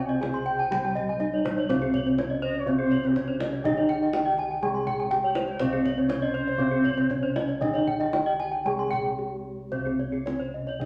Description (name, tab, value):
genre	Balinese gamelan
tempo	110-123 BPM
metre	4/4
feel	straight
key	C pelog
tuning	A4 = 441 Hz
part	gamelan-type bronze metallophone	melody	0.0-10.9 s	C4 to Ab4-20c	-30 LUFS	equal	none
part	mellow bansuri	second line	0.0-7.6 s	G4-31c to G5-29c	-37 LUFS	equal	none
part	gamelan-type bronze metallophone	accompaniment	0.0-10.9 s	C3 to Ab3-20c	-37 LUFS	equal	none
part	gamelan-type bronze metallophone	arpeggios	0.0-10.9 s	C5 to Ab5-20c	-32 LUFS	equal	none
part	gamelan-type bossed gongs	bass	0.0-10.9 s	C2 to Eb4-30c	-42 LUFS	equal	none
part	gamelan-type bronze metallophone	arpeggios	0.1-10.8 s	Ab4-20c to C6	-36 LUFS	equal	none
part	kendang	percussion	0.1-10.9 s	none	-39 LUFS	equal	none
room	wet large studio reverb, RT60 1.2 s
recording	none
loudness	-26 LUFS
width	mono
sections	0.0-1.7 A section; 1.7-9.7 B section; 9.7-10.9 A section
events	break 8.9-9.7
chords	none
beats	0.21 0.72 1.21 | 1.70 2.19 2.68 3.16 | 3.65 4.14 4.62 5.11 | 5.60 6.09 6.59 7.09 | 7.60 8.12 8.64 9.18 | 9.72 10.27 10.81